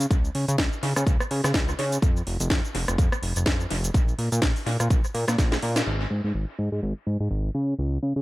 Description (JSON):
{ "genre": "filtered disco house", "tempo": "125 BPM", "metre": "4/4", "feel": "swing 56% on 16ths", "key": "unclear", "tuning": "A4 = 440 Hz", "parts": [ { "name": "fat analog bass", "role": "bass", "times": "0.0-8.2 s", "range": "F1 to Db3", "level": "-25 LUFS", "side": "equal", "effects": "sidechain pumping, low-pass filter" }, { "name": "house drum kit", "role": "drums", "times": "0.0-5.8 s", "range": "cabasa, hi-hat, rim click, snare drum", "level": "-28 LUFS", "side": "equal", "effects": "sidechain pumping on hats, sidechain pumping on perc, dub echo" }, { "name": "electronic kick drum", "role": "drums", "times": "0.1-5.5 s", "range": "none", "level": "-22 LUFS", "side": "equal", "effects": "none" } ], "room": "light reverb", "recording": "echo-heavy mix", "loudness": "-22 LUFS", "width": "side -18 dB against mid", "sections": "0.0-5.9 A section; 5.9-8.2 B section", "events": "drum fill 5.4-5.9; band accent 5.7; filter sweep on analog synth bass 5.9-8.2", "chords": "none", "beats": "| 0.11 0.59 1.07 1.55 | 2.03 2.51 2.99 3.47 | 3.95 4.43 4.91 5.39 | 5.87 6.35 6.83 7.31 | 7.79" }